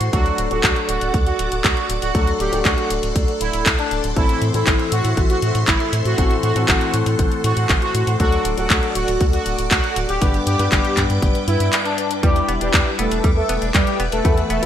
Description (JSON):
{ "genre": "italo disco", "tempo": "119 BPM", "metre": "4/4", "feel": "straight", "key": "A dorian", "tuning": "A4 = 440 Hz", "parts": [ { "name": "analog synth brass", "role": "melody", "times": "0.0-14.7 s", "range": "G3 to A4", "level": "-22 LUFS", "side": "right 1 dB", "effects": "chorus, ping-pong delay" }, { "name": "string machine, full ensemble", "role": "sustained chords", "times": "0.0-14.7 s", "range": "A4 to E6", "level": "-27 LUFS", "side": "equal", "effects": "phaser, ensemble chorus" }, { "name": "dark grand piano", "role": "stabs", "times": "0.0-14.7 s", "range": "G2 to B4", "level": "-25 LUFS", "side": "left 4 dB", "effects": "vintage 12-bit sampler grit, low-pass filter" }, { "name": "round analog bass", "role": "bass", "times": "0.0-14.7 s", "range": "D1 to A2", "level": "-22 LUFS", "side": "equal", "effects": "tube saturation" }, { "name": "house drum kit", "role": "drums", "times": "0.0-14.7 s", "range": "handclaps, hi-hat", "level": "-22 LUFS", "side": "left 1 dB", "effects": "gated reverb" }, { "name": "electronic kick drum", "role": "drums", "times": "0.1-14.3 s", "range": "none", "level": "-19 LUFS", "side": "equal", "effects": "none" }, { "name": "direct-recorded clean electric guitar", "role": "arpeggios", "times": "12.2-14.7 s", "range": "G3 to D4", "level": "-28 LUFS", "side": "right 2 dB", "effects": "tremolo, low-pass filter, ping-pong delay" } ], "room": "moderate plate reverb, RT60 1.8 s", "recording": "bright 1980s-style digital production", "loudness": "-16 LUFS", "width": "side -10 dB against mid", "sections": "0.0-12.2 A section; 12.2-14.7 B section", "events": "band accent 11.7; filter sweep on grand piano 12.2-14.7", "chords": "0.1 D; 4.2 Am; 8.2 D; 10.2 G; 12.2 Em7" }